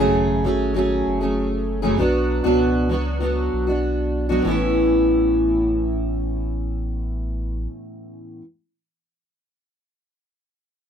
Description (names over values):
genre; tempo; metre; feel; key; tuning
acoustic pop; 97 BPM; 4/4; straight; A major; A4 = 439 Hz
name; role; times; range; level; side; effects
fingerpicked steel-string acoustic guitar; accompaniment; 0.0-8.4 s; F#2 to G#4; -20 LUFS; equal; double-tracked left and right
warm sub bass; bass; 0.0-7.7 s; F#1 to C#2; -26 LUFS; equal; none
room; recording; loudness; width
little or no reverb; rough home demo mix; -19 LUFS; side -8 dB against mid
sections
0.0-4.4 A section; 4.4-6.9 B section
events
none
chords
0.0 F#madd9; 2.0 Bm; 4.4 Aadd9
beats
0.14 0.75 1.37 | 1.99 2.60 3.22 3.83 | 4.45 5.06 5.68 6.29